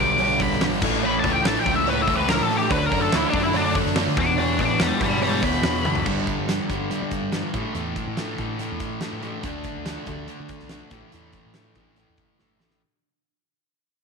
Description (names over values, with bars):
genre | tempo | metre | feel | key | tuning
classic rock | 143 BPM | 4/4 | straight | unclear | A4 = 440 Hz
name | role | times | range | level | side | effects
octave-fuzz lead guitar | melody | 0.0-6.1 s | D4 to D6 | -24 LUFS | left 3 dB | wah, distortion
bright tonewheel organ | sustained chords | 0.0-6.0 s | A3 to B4 | -35 LUFS | left 1 dB | none
distorted electric guitar | riff | 0.0-12.8 s | E2 to D4 | -28 LUFS | left 15 dB | distortion
sludgy distorted guitar | riff | 0.0-12.8 s | E2 to D4 | -28 LUFS | right 13 dB | overdrive
growling fingered electric bass | bass | 0.0-12.8 s | F#1 to G3 | -30 LUFS | equal | overdrive
huge arena drum kit | drums | 0.2-12.8 s | crash cymbal, hi-hat, kick drum, snare drum, toms | -27 LUFS | equal | none
cowbell | percussion | 0.2-5.7 s | none | -34 LUFS | right 14 dB | none
room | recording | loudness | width
light reverb, studio reverb | 1960s-style stereo with parts hard left and right | -20 LUFS | side -5 dB against mid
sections
0.0-6.1 A section; 6.1-12.8 B section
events
lead electric guitar solo 0.0-6.1; drum fill 5.9, 12.4-12.8; fade-out 6.1-12.8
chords
0.0 G; 0.8 A; 2.7 D; 4.2 Em; 6.1 G5; 7.5 A5; 9.4 D5; 10.9 A5